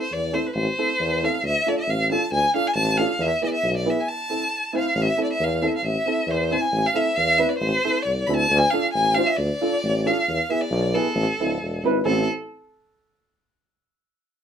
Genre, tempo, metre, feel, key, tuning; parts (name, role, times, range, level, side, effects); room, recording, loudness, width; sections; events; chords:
klezmer; 136 BPM; 2/4; straight; A harmonic minor; A4 = 435 Hz
rich violin; melody; 0.0-12.3 s; A4 to B5; -22 LUFS; equal
warm tuba; bass; 0.1-12.3 s; D1 to E2; -24 LUFS; left 1 dB
dark upright piano; accompaniment; 0.3-12.3 s; B3 to C5; -25 LUFS; right 2 dB
moderate small room reverb, RT60 0.5 s; minimal, uncompressed stereo recording; -20 LUFS; side -8 dB against mid
0.0-5.0 A section; 5.0-12.1 A section
break 4.1-5.0
0.0 Am; 1.4 Dm; 3.2 E; 4.1 Am; 8.5 Dm; 10.3 E; 11.2 Am